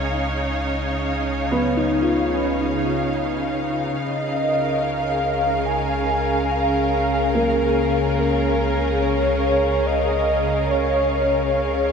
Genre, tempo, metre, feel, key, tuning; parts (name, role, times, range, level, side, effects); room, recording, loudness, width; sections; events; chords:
ambient; 72 BPM; 3/4; straight; A4 = 439 Hz
rich symphonic string section; sustained chords; 0.0-11.9 s; Db3 to F5; -23 LUFS; left 1 dB
felt-muted upright piano; arpeggios; 0.0-11.9 s; Bb3 to F4; -25 LUFS; left 1 dB; tape echo
warm sub bass; bass; 0.0-11.9 s; Db2; -28 LUFS; equal
bowed-like drone; drone; 0.0-11.9 s; Db3; -27 LUFS; right 1 dB; built-in reverb, phaser
breathy flute-like synth lead; melody; 4.0-11.9 s; Db5 to Ab5; -22 LUFS; equal; analog chorus, tape echo
wet huge ambient reverb, RT60 7.9 s; -18 LUFS; side -6 dB against mid
0.0-11.9 A section
0.0 Db9; 4.0 Bbm7/Db